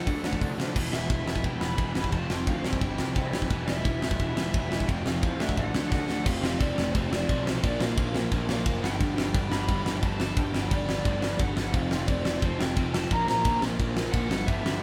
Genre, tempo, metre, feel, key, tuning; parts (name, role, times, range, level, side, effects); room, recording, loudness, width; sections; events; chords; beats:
punk rock; 175 BPM; 4/4; straight; A4 = 438 Hz
lead guitar through a small cranked amp; melody; 0.0-14.8 s; C5 to B5; -37 LUFS; equal; overdrive
cranked stack guitar; riff; 0.0-14.8 s; F2 to F#4; -39 LUFS; equal; overdrive
overdriven electric guitar; riff; 0.0-14.8 s; E2 to D4; -36 LUFS; equal
fuzz picked electric bass; bass; 0.1-14.8 s; E1 to C3; -34 LUFS; equal; overdrive
big rock drum kit; drums; 0.1-14.7 s; crash cymbal, hi-hat, kick drum, ride cymbal, snare drum; -30 LUFS; equal
moderate studio reverb, RT60 0.5 s; band playing live in one room; -27 LUFS; mono
0.7-6.3 A section; 6.3-14.8 B section
drum fill 5.9-6.3
0.1 D; 0.7 Em; 2.1 F; 2.6 C; 3.5 Em; 4.9 F; 5.4 D; 6.3 F; 7.6 Bb; 8.8 G; 11.7 F; 13.1 Bb; 14.3 G
0.06 0.41 | 0.75 1.09 1.44 1.78 | 2.13 2.47 2.81 3.16 | 3.50 3.85 4.19 4.53 | 4.88 5.22 5.57 5.91 | 6.25 6.60 6.94 7.28 | 7.62 7.97 8.31 8.65 | 8.99 9.34 9.68 10.02 | 10.36 10.71 11.05 11.39 | 11.73 12.07 12.42 12.76 | 13.10 13.45 13.79 14.13 | 14.47 14.82